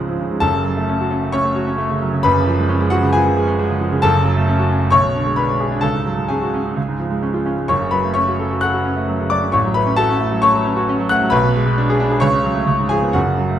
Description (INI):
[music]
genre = classical, virtuoso piano study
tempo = 133 BPM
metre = 4/4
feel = rubato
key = F# minor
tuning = A4 = 438 Hz
[part]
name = clear concert grand piano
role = solo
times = 0.0-13.6 s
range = F#1 to F#6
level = -15 LUFS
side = equal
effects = none
[sound]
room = moderate recital hall reverb, RT60 1.6 s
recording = close, detailed microphones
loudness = -15 LUFS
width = side -10 dB against mid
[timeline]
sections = 0.4-13.6 A section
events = none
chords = 0.4 F#m; 2.2 C#7/F#; 4.0 F#m; 4.9 G#dim/B; 5.8 C#sus4; 6.8 C#; 7.7 F#m; 9.5 F#m/A; 11.3 G#dim/B; 12.2 F#m/C#; 12.7 C#7